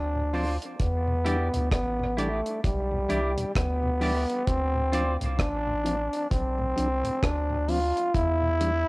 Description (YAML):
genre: dub reggae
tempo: 65 BPM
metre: 4/4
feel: swing 61% on 16ths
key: D dorian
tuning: A4 = 440 Hz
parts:
  - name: growling trombone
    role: melody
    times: 0.0-8.9 s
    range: G3 to F4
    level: -28 LUFS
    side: equal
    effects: cassette tape, dub echo
  - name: soft dub sub bass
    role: bass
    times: 0.0-8.8 s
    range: A1 to E2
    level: -29 LUFS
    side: equal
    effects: tube saturation
  - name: mellow tonewheel organ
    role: accompaniment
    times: 0.2-8.7 s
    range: D2 to D4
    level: -34 LUFS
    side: left 1 dB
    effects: slow rotary speaker, cassette tape, dub echo
  - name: semi-hollow electric guitar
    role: accompaniment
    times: 0.3-5.2 s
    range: E4 to D5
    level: -34 LUFS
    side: right 1 dB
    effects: cassette tape, dub echo
  - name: deep reggae drum kit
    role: drums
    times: 0.3-8.9 s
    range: hi-hat, kick drum, rim click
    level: -29 LUFS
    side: equal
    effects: none
room: moderate studio reverb, RT60 0.5 s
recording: home recording on cassette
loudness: -24 LUFS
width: side -24 dB against mid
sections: 0.0-8.9 A section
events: none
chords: 0.0 Dm7; 0.8 Em7; 4.5 Dm7; 8.1 Em7